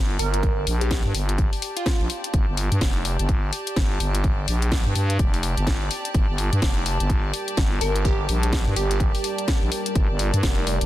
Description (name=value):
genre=bass house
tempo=126 BPM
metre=4/4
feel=swing 60% on 16ths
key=G minor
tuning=A4 = 440 Hz
part: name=growling FM bass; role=bass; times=0.0-10.9 s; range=F1 to G2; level=-23 LUFS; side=equal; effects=sidechain pumping
part: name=warm studio string section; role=texture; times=0.0-10.9 s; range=G4 to A5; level=-32 LUFS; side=equal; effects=sidechain pumping
part: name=glassy wavetable pluck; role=melody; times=0.2-2.4, 7.8-9.0 s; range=F4 to Bb4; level=-30 LUFS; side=right 3 dB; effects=chorus, dub echo
part: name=house drum kit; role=drums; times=0.2-10.9 s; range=hi-hat, snare drum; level=-28 LUFS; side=left 2 dB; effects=none
part: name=electronic kick drum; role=drums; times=0.4-10.5 s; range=none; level=-22 LUFS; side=equal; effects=none
part: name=dark analog pad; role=sustained chords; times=7.3-10.9 s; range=G3 to D5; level=-32 LUFS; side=left 1 dB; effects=chorus, phaser, sidechain pumping
room=digital ambience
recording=dense, heavily limited modern master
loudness=-20 LUFS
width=side -14 dB against mid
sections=0.0-10.9 A section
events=none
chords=0.0 Gm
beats=| 0.43 0.91 1.38 1.86 | 2.34 2.81 3.29 3.76 | 4.24 4.72 5.19 5.67 | 6.14 6.62 7.10 7.57 | 8.05 8.53 9.00 9.48 | 9.96 10.43